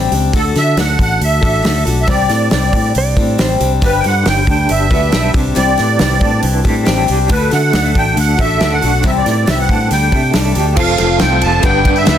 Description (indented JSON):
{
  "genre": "folk rock and heartland rock",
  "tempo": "138 BPM",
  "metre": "4/4",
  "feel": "straight",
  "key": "unclear",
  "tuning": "A4 = 439 Hz",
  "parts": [
    { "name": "picked steel-string acoustic guitar", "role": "accompaniment", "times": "0.0-12.2 s", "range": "G2 to B4", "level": "-19 LUFS", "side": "left 8 dB", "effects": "none" },
    { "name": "fingered electric bass", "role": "bass", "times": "0.0-12.2 s", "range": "F1 to D3", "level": "-16 LUFS", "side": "equal", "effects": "none" },
    { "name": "natural country drum kit", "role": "drums", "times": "0.1-12.2 s", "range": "crash cymbal, hi-hat, kick drum, ride cymbal, snare drum", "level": "-17 LUFS", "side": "equal", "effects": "none" },
    { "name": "musette accordion", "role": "melody", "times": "0.4-12.2 s", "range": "A4 to A5", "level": "-17 LUFS", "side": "right 3 dB", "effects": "none" },
    { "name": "clean lap steel guitar", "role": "second line", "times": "3.0-3.7 s", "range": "C5 to D5", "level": "-21 LUFS", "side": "right 4 dB", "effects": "analog delay" },
    { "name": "electric guitar through a small old amp", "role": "riff", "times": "3.8-12.2 s", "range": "G2 to B4", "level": "-20 LUFS", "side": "right 2 dB", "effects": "tremolo" },
    { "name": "bright tonewheel organ", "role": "sustained chords", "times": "10.8-12.2 s", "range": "D4 to C5", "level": "-28 LUFS", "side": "equal", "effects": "none" },
    { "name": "tambourine", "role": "percussion", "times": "11.0-12.2 s", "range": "none", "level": "-29 LUFS", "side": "right 7 dB", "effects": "none" }
  ],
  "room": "light reverb, studio ambience",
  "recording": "dense, heavily limited modern master",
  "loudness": "-11 LUFS",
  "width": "side -10 dB against mid",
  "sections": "0.0-10.8 A section; 10.8-12.2 B section",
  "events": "none",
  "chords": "0.3 D; 2.1 Cadd9; 3.8 G; 5.3 Cadd9; 7.3 D; 9.0 Cadd9; 9.9 Dsus4; 10.8 F; 11.6 G"
}